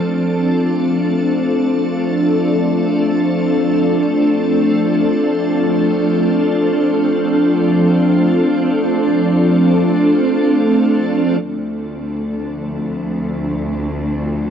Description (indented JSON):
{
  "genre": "ambient",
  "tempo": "free time",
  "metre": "none",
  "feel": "none",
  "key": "D minor",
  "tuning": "A4 = 440 Hz",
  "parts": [
    { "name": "soft additive organ-like pad", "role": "sustained chords", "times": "0.0-14.5 s", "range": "F3 to A4", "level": "-14 LUFS", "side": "equal", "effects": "ensemble chorus, built-in reverb, cassette tape" },
    { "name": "rich studio cello section", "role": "bass", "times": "11.4-14.5 s", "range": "D2", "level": "-22 LUFS", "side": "equal", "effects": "none" }
  ],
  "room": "wet booth ambience, RT60 0.2 s",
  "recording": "home recording on cassette",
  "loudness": "-14 LUFS",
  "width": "side -8 dB against mid",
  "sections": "0.0-11.4 A section; 11.4-14.5 A section",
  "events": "none",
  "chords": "0.0 Dm7",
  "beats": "free time"
}